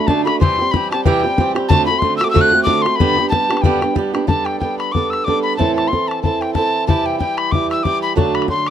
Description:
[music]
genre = celtic folk, Celtic reel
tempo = 185 BPM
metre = 4/4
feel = swing 57% on 8ths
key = G major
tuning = A4 = 440 Hz
[part]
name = mellow hollow tin whistle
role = melody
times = 0.0-8.7 s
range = G5 to F#6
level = -18 LUFS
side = left 3 dB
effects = none
[part]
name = fingerpicked swing-style acoustic guitar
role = accompaniment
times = 0.0-8.7 s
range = G2 to A4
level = -18 LUFS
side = right 5 dB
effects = none
[part]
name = bodhran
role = percussion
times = 0.1-8.7 s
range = none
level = -18 LUFS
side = left 3 dB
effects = none
[sound]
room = light reverb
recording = close, detailed microphones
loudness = -14 LUFS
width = side -9 dB against mid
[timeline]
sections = 0.0-4.3 A section; 4.3-8.7 B section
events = none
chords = 0.4 C; 1.7 D7; 3.0 G; 4.3 Gadd9; 5.6 Am; 6.9 C; 8.2 D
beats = 0.08 | 0.41 0.73 1.05 1.38 | 1.70 2.02 2.35 2.67 | 2.99 3.32 3.64 3.96 | 4.29 4.61 4.94 5.26 | 5.58 5.91 6.23 6.55 | 6.88 7.20 7.52 7.85 | 8.17 8.49

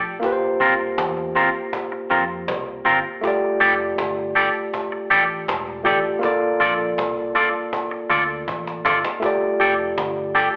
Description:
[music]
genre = lovers rock reggae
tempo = 80 BPM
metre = 4/4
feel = straight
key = F major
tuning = A4 = 440 Hz
[part]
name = barky tine electric piano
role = accompaniment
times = 0.0-10.6 s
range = A3 to D5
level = -26 LUFS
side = equal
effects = slapback echo
[part]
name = vintage muted fingered electric bass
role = bass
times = 0.0-10.5 s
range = E1 to F2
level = -40 LUFS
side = equal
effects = none
[part]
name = cajon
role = drums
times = 0.0-10.6 s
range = none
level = -29 LUFS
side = equal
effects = slapback echo
[part]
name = twangy electric guitar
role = stabs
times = 0.6-10.5 s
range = C4 to D5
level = -21 LUFS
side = equal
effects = slapback echo
[sound]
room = light reverb, digital ambience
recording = live gig heard through the venue's PA, club reverb, telephone sound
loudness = -21 LUFS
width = mono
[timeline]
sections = 0.0-10.6 A section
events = drum fill 8.5-9.2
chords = 0.2 C7sus4; 3.2 F69; 6.2 Bbmaj7; 9.2 F69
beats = | 0.23 0.98 1.73 2.48 | 3.23 3.98 4.73 5.48 | 6.23 6.98 7.73 8.48 | 9.23 9.98

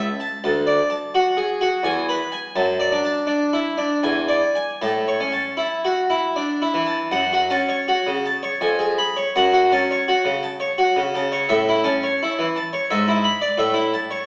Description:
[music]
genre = classical, baroque-style suite movement for harpsichord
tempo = 76-87 BPM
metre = 3/4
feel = rubato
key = A major, F# minor from 7.1 s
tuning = A4 = 440 Hz
[part]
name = harpsichord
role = solo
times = 0.0-14.3 s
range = D2 to B5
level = -18 LUFS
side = equal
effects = none
[sound]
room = wet recital hall reverb, RT60 1.4 s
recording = heard from further back in the room, AM radio sound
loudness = -18 LUFS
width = side -34 dB against mid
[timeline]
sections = 0.0-7.1 A section; 7.1-14.3 A section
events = none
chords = 0.4 D; 1.8 E; 2.6 D/F#; 4.0 E7; 4.8 A; 7.1 F#m; 8.6 C#7/E#; 9.3 F#m; 11.5 A; 12.9 E7/G#; 13.6 A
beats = | 0.44 1.14 1.85 | 2.56 3.28 4.02 | 4.80 5.58 6.36 | 7.13 7.88 8.61 | 9.34 10.06 10.78 | 11.49 12.19 12.90 | 13.59

